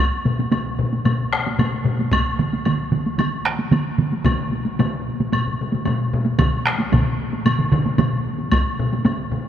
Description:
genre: japanese traditional, taiko drum ensemble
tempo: 112 BPM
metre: 4/4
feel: straight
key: none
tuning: none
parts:
  - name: taiko ensemble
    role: percussion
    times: 0.3-9.2 s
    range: none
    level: -24 LUFS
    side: right 1 dB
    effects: none
  - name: taiko ensemble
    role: percussion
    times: 0.3-9.4 s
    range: none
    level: -23 LUFS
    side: left 2 dB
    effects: none
  - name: woodblock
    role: percussion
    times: 0.5-9.2 s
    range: none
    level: -28 LUFS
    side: left 1 dB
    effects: none
  - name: taiko ensemble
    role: percussion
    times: 2.1-8.6 s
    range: none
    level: -27 LUFS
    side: equal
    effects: none
  - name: taiko ensemble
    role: percussion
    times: 2.4-8.1 s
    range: none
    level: -23 LUFS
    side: right 3 dB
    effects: none
room: wet cathedral reverb, RT60 6.2 s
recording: in a vast, echoing space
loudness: -18 LUFS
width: side -10 dB against mid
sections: 0.0-9.5 A section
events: none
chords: none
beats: 0.52 1.05 1.58 | 2.12 2.65 3.19 3.72 | 4.26 4.79 5.32 5.86 | 6.39 6.92 7.46 7.99 | 8.52 9.05

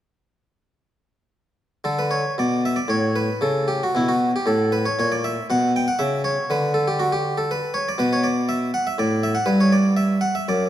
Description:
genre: classical, baroque-style suite movement for harpsichord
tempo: 119 BPM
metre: 3/4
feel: rubato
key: D major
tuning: A4 = 440 Hz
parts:
  - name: harpsichord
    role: solo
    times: 1.8-10.7 s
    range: F#2 to G5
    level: -19 LUFS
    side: equal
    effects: none
room: moderate concert hall reverb, RT60 2.3 s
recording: dark, warm production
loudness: -19 LUFS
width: side -12 dB against mid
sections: 1.9-10.7 A section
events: none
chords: 1.9 D5; 3.4 A; 5.0 A#dim; 6.5 N.C.; 8.0 Asus2; 9.5 Em9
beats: | 1.85 2.38 2.91 | 3.43 3.95 4.46 | 4.97 5.48 5.98 | 6.48 6.98 7.48 | 7.99 8.48 8.98 | 9.47 9.96 10.45

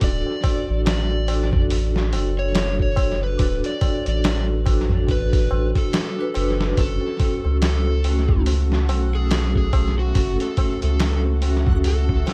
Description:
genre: trip hop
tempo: 71 BPM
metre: 4/4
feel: swing 58% on 16ths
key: unclear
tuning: A4 = 440 Hz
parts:
  - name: overdriven slide guitar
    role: melody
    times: 0.0-12.3 s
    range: F#4 to D5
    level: -32 LUFS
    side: equal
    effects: dub echo
  - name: vibraphone with medium hard mallets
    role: accompaniment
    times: 0.0-12.3 s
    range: A3 to B4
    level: -29 LUFS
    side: equal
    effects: tremolo, tape echo
  - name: soft dub sub bass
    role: bass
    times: 0.0-12.2 s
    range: D1 to C#2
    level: -24 LUFS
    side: equal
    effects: none
  - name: trip hop sampler-style drum kit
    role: drums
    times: 0.0-12.3 s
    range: hi-hat, kick drum, snare drum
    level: -25 LUFS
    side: equal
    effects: tape echo
  - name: tabla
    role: percussion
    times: 0.0-12.3 s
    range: none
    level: -34 LUFS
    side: equal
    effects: none
  - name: backwards swelling texture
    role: texture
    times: 7.9-12.3 s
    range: A3 to F#4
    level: -40 LUFS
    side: equal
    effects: built-in reverb
room: digital ambience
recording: echo-heavy mix, lossy compression artefacts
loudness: -21 LUFS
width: mono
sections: 0.0-12.3 A section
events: none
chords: 0.0 D; 6.8 F#m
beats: | 0.02 0.86 1.71 2.55 | 3.40 4.24 5.09 5.93 | 6.78 7.62 8.47 9.31 | 10.16 11.01 11.85

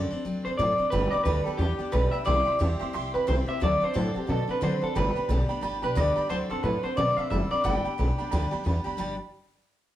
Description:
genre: rockabilly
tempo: 178 BPM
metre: 4/4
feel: swing 60% on 8ths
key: G major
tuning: A4 = 440 Hz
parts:
  - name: picked steel-string acoustic guitar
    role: accompaniment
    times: 0.0-9.2 s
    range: G2 to A4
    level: -32 LUFS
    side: left 2 dB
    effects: none
  - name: upright bass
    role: bass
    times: 0.0-9.2 s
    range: F#1 to D3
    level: -28 LUFS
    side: equal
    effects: none
  - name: electric guitar through a small old amp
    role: melody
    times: 0.4-8.6 s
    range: G4 to G5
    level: -27 LUFS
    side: equal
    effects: spring reverb
  - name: honky-tonk upright piano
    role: accompaniment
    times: 0.9-9.2 s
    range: D5 to D6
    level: -36 LUFS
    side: right 4 dB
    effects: none
room: wet studio reverb, RT60 0.7 s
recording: band playing live in one room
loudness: -24 LUFS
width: side -12 dB against mid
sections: 0.0-6.3 A section; 6.3-9.0 B section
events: none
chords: 0.0 D7; 0.9 G; 2.3 C; 3.6 D7; 5.0 G; 6.3 D7; 7.6 G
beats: 0.25 0.58 | 0.92 1.26 1.59 1.93 | 2.26 2.60 2.94 3.27 | 3.61 3.94 4.28 4.62 | 4.95 5.29 5.62 5.96 | 6.30 6.63 6.97 7.31 | 7.64 7.98 8.32 8.65 | 8.99

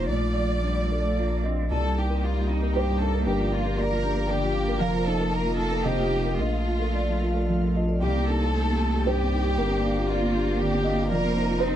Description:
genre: neoclassical piano and strings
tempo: 109-120 BPM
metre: 3/4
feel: rubato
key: C dorian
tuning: A4 = 440 Hz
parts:
  - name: rich chamber violin section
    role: melody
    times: 0.0-11.8 s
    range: Eb4 to D5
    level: -30 LUFS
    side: equal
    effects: none
  - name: rich cello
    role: second line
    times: 0.0-11.8 s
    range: G3 to C4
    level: -34 LUFS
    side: right 4 dB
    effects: none
  - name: felt-muted upright piano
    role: accompaniment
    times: 0.0-11.8 s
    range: Bb1 to F5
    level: -27 LUFS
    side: equal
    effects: none
  - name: airy breathy pad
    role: sustained chords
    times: 0.0-11.8 s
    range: A3 to F5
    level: -36 LUFS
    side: left 1 dB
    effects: chorus
  - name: saturated sub bass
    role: bass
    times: 0.0-11.8 s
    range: F1 to C2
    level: -27 LUFS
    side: equal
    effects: none
  - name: vibraphone with hard mallets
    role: arpeggios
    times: 1.7-11.7 s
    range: C4 to A5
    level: -34 LUFS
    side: right 1 dB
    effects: slapback echo
room: light reverb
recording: dark, warm production, nothing above 11.0 kHz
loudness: -22 LUFS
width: side -11 dB against mid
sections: 0.0-1.7 A section; 1.7-11.8 A section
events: none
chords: 0.1 Bbmaj7; 1.7 Cm7; 3.3 Gm7; 4.8 F7sus4; 6.4 Bbmaj7; 8.0 Cm7; 9.6 Gm7; 11.1 F7sus4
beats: | 0.09 0.63 1.17 | 1.71 2.24 2.76 | 3.27 3.78 4.29 | 4.80 5.32 5.84 | 6.39 6.94 7.48 | 8.02 8.55 9.06 | 9.58 10.09 10.60 | 11.10 11.61

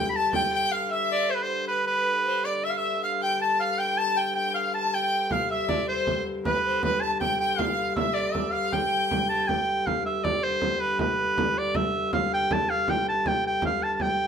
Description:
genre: medieval dance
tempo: 105 BPM (dotted quarters)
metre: 6/8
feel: straight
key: G mixolydian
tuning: A4 = 440 Hz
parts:
  - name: bright shawm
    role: melody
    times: 0.0-14.3 s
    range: B4 to B5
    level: -25 LUFS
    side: right 2 dB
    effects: none
  - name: rich fiddle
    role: second line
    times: 0.0-9.7 s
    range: B4 to A5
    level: -29 LUFS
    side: left 4 dB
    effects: none
  - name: dark hurdy-gurdy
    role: drone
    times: 0.0-14.3 s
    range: G2 to D3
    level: -32 LUFS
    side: left 3 dB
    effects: none
  - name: frame drum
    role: percussion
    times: 0.1-0.5, 5.3-14.2 s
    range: none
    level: -31 LUFS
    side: right 1 dB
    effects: none
room: wet studio reverb, RT60 0.8 s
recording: band playing live in one room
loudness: -23 LUFS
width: side -7 dB against mid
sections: 0.7-9.9 A section; 9.9-14.3 A section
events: none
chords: none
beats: 0.14 | 0.72 1.29 | 1.87 2.44 | 3.02 3.59 | 4.17 4.74 | 5.31 5.88 | 6.45 7.02 | 7.59 8.16 | 8.73 9.30 | 9.86 10.43 | 10.99 11.56 | 12.12 12.69 | 13.25 13.81

